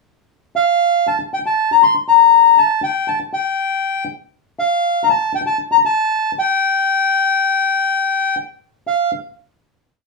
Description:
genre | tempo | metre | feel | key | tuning
tango | 119 BPM | 4/4 | rubato | unclear | A4 = 437 Hz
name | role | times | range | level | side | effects
bandoneon | solo | 0.6-9.1 s | F5 to C6 | -13 LUFS | left 4 dB | none
room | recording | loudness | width
wet studio ambience, RT60 0.5 s | band playing live in one room | -14 LUFS | side -1 dB against mid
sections
0.0-0.8 pickup bar; 0.8-8.9 A section; 8.9-10.1 final note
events
none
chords
none

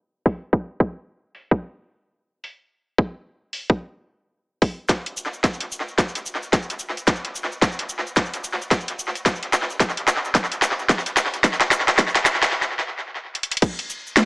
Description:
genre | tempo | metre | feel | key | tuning
glitch hop | 110 BPM | 4/4 | swing 61% on 16ths | none | none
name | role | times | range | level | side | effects
drum and bass drum kit | drums | 0.3-14.3 s | crash cymbal, hi-hat, snare drum | -20 LUFS | equal | overdrive, high-pass filter on hats, small room reverb, high-pass filter on cymbals, high-pass filter on snare, tape echo
electronic kick drum | drums | 0.3-13.8 s | none | -19 LUFS | equal | overdrive, small room reverb
cabasa | percussion | 4.9-14.3 s | none | -34 LUFS | equal | tape echo
room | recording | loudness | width
moderate plate reverb, RT60 1.5 s, digital ambience | echo-heavy mix, high-pass filter, low-pass filter, small speaker sound | -20 LUFS | side -29 dB against mid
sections
0.0-4.9 A section; 4.9-13.6 B section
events
filter sweep 0.0-4.9; build-up 4.9-13.6; drum fill 4.9-12.5, 13.3; stop 12.5-13.6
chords
none

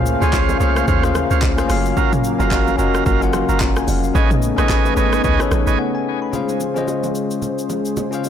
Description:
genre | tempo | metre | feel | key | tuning
amapiano | 110 BPM | 4/4 | swing 58% on 16ths | Db major | A4 = 440 Hz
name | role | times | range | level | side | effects
bell-like tine electric piano | accompaniment | 0.0-8.3 s | Db4 to C6 | -21 LUFS | left 8 dB | none
warm analog pad | sustained chords | 0.0-8.3 s | Db3 to F5 | -24 LUFS | right 2 dB | chorus, sidechain pumping
deep log drum bass | bass | 0.0-5.8 s | F1 to Eb2 | -20 LUFS | equal | none
deep house drum kit | drums | 0.1-8.3 s | handclaps, hi-hat, kick drum, rim click, shaker, toms | -21 LUFS | equal | none
tonewheel organ | stabs | 0.2-5.8 s | Gb4 to G#5 | -23 LUFS | right 9 dB | overdrive, ping-pong delay
bongos and congas | percussion | 0.2-8.3 s | none | -30 LUFS | right 4 dB | none
room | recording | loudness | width
digital ambience | blown-out, overdriven recording, overdrive | -15 LUFS | side -9 dB against mid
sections
0.0-6.3 A section; 6.3-8.3 B section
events
drop 0.0-6.3; break 5.8-6.3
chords
0.0 Dbmaj7; 1.7 Gbmaj7; 4.2 Amaj9#11; 6.3 Dbmaj7

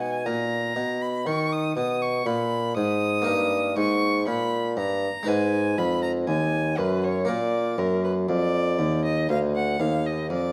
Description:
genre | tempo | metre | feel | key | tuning
classical, baroque-style sonata movement with continuo | 60 BPM | 4/4 | straight | unclear | A4 = 442 Hz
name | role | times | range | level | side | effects
rich violin | melody | 0.0-10.5 s | Bb4 to Eb6 | -31 LUFS | equal | none
harpsichord | accompaniment | 0.0-10.5 s | D2 to Cb5 | -30 LUFS | equal | none
warm bassoon | bass | 0.0-10.5 s | D2 to Eb3 | -28 LUFS | equal | none
room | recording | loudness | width
moderate recital hall reverb, RT60 1.5 s | none | -25 LUFS | mono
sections
0.0-10.5 A section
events
none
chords
0.0 Abm; 3.3 Eb/G; 5.3 Abm; 7.3 Bb

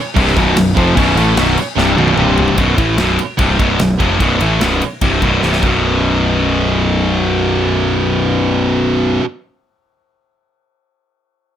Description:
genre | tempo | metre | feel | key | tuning
heavy metal | 148 BPM | 4/4 | straight | unclear | A4 = 439 Hz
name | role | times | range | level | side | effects
heavy high-gain guitar | riff | 0.1-9.2 s | B1 to A3 | -18 LUFS | right 10 dB | distortion
distorted electric guitar | riff | 0.2-9.3 s | B1 to A3 | -16 LUFS | left 6 dB | overdrive
overdriven electric guitar | riff | 0.2-2.6 s | B1 to A3 | -18 LUFS | equal | none
fuzz picked electric bass | bass | 0.2-9.2 s | B0 to A1 | -18 LUFS | equal | overdrive
modern studio drum kit | drums | 0.2-5.7 s | crash cymbal, kick drum, ride cymbal, snare drum, toms | -19 LUFS | equal | none
room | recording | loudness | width
light reverb | none | -11 LUFS | side -10 dB against mid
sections
0.0-2.6 A section; 2.6-5.8 B section; 5.8-9.1 C section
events
drum fill 1.8-2.6, 5.4-5.8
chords
0.0 B5; 2.2 C5; 2.6 B5; 5.4 C5; 5.6 B5

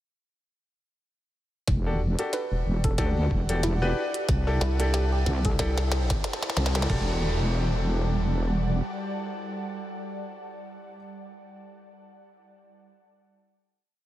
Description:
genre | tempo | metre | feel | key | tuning
glitch hop | 92 BPM | 4/4 | swing 57% on 16ths | E minor | A4 = 443 Hz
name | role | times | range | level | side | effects
wobble bass | bass | 1.7-8.8 s | E1 to D2 | -25 LUFS | equal | chorus
boom bap sampler-style drum kit | drums | 1.7-7.1 s | crash cymbal, kick drum, toms | -28 LUFS | equal | overdrive, studio reverb
glitchy drum kit | drums | 1.7-7.0 s | hi-hat, snare drum | -33 LUFS | equal | studio reverb
ethereal airy pad | texture | 2.6-10.3 s | G3 to A5 | -36 LUFS | right 1 dB | ensemble chorus, built-in reverb, sidechain pumping
bright baby grand piano | stabs | 1.9-11.0 s | D4 to B4 | -33 LUFS | left 1 dB | sidechain pumping, low-pass filter, analog delay
woody wave-folded pluck | melody | 2.3-6.4 s | E4 to B4 | -37 LUFS | equal | chorus, analog delay
rubbery square bass | bass | 2.5-6.2 s | E1 to C2 | -25 LUFS | equal | tube saturation
room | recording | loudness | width
moderate huge ambient reverb, RT60 7.3 s | dreamy mix soaked in reverb | -24 LUFS | side -14 dB against mid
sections
1.7-6.9 build; 6.9-9.5 final chord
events
build-up 1.7-6.9; drum fill 1.7-6.9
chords
1.7 Em11; 4.3 C6; 6.9 Em11

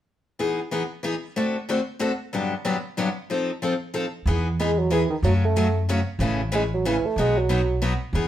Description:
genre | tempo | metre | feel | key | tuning
acoustic string swing (jazz manouche) | 186 BPM | 3/4 | swing 60% on 8ths | E major | A4 = 440 Hz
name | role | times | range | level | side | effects
picked steel-string acoustic guitar | accompaniment | 0.4-8.3 s | G2 to A4 | -25 LUFS | left 2 dB | none
upright bass | bass | 4.3-8.3 s | A1 to F#2 | -23 LUFS | equal | none
mellow bassoon | melody | 4.6-7.8 s | D#3 to A3 | -24 LUFS | right 3 dB | none
room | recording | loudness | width
moderate studio reverb, RT60 0.7 s | heard from further back in the room | -22 LUFS | side -11 dB against mid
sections
0.4-4.3 A section; 4.3-8.3 B section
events
none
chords
0.4 Emaj7; 1.4 D7; 2.3 Gmaj7; 3.3 F7; 4.3 Emaj7; 5.2 F#m; 6.2 Amaj7; 7.2 B

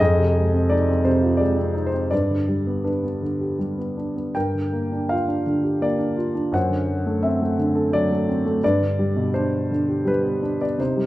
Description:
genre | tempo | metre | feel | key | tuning
classical, lyrical solo piano | 80-87 BPM | 3/4 | rubato | unclear | A4 = 440 Hz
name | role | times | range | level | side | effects
dark concert grand piano | solo | 0.0-11.1 s | F2 to G5 | -19 LUFS | equal | none
room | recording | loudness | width
moderate recital hall reverb, RT60 1.8 s | none | -19 LUFS | side -16 dB against mid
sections
0.0-11.1 A section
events
none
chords
0.0 Fm7; 2.1 G; 4.4 Gm7; 6.5 D7/F#; 8.6 G

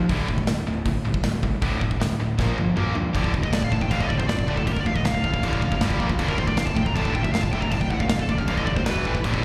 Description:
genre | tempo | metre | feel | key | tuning
heavy metal | 157 BPM | 4/4 | straight | D minor | A4 = 440 Hz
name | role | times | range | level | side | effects
tight distorted guitar | riff | 0.0-9.4 s | D2 to Bb3 | -31 LUFS | equal | distortion, slapback echo
tight distorted guitar | riff | 0.0-9.4 s | D2 to Bb3 | -32 LUFS | equal | distortion, slapback echo
fuzz picked electric bass | bass | 0.0-9.4 s | D1 to G2 | -30 LUFS | equal | overdrive
modern studio drum kit | drums | 0.1-9.4 s | crash cymbal, hi-hat, kick drum, snare drum, toms | -28 LUFS | equal | none
high-gain lead guitar | melody | 3.4-9.2 s | G4 to Bb5 | -31 LUFS | equal | distortion, slapback echo, tape echo
room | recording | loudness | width
small room ambience | live gig heard through the venue's PA, recital hall reverb | -23 LUFS | mono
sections
0.0-3.1 A section; 3.1-9.4 B section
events
drum fill 2.4-3.1; lead electric guitar solo 3.1-9.4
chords
0.1 D5; 2.4 Bb5; 3.1 Dm; 5.8 G5; 6.0 Bb5; 6.2 D5; 8.9 E5; 9.1 A5

